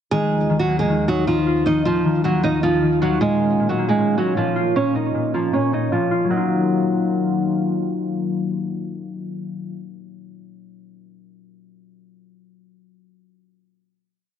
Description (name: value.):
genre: hip hop, trap.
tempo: 155 BPM.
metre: 4/4.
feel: half-time.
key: Eb minor.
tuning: A4 = 439 Hz.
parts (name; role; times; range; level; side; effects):
nylon-string guitar; melody; 0.1-7.4 s; F3 to Eb5; -20 LUFS; right 3 dB; low-pass filter, digital delay.
concert harp; accompaniment; 0.1-9.9 s; Bb2 to F4; -23 LUFS; left 5 dB; low-pass filter.
warm analog pad; sustained chords; 0.1-9.7 s; Eb2 to F4; -27 LUFS; equal; chorus.
room: moderate lush hall reverb, RT60 2.4 s.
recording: low-pass filter.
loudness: -17 LUFS.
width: side -9 dB against mid.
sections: 0.1-6.3 breakdown; 6.3-9.4 final chord.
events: filter sweep 0.1-6.3.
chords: 0.1 Ebmadd9; 3.2 Bbm; 6.3 Ebmadd9.